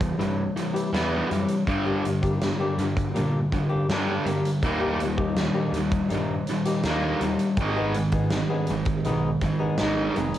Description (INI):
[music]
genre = quiet-loud alternative rock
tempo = 81 BPM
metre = 4/4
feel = straight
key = unclear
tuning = A4 = 438 Hz
[part]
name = fuzz guitar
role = riff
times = 0.0-10.4 s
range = G2 to B3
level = -25 LUFS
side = equal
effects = distortion, cassette tape
[part]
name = growling picked electric bass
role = bass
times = 0.0-10.3 s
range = F1 to Bb2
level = -30 LUFS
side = equal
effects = overdrive
[part]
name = huge arena drum kit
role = drums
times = 0.0-10.4 s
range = hi-hat, kick drum, snare drum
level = -30 LUFS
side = equal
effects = cassette tape
[part]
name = fingerpicked swing-style acoustic guitar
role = arpeggios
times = 0.2-10.4 s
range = E3 to G#4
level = -30 LUFS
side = left 2 dB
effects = cassette tape
[sound]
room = little or no reverb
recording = home recording on cassette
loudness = -22 LUFS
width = side -12 dB against mid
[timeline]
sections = 0.0-10.4 A section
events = none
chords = 0.0 Em; 1.7 Gm; 4.6 D#; 7.6 G#m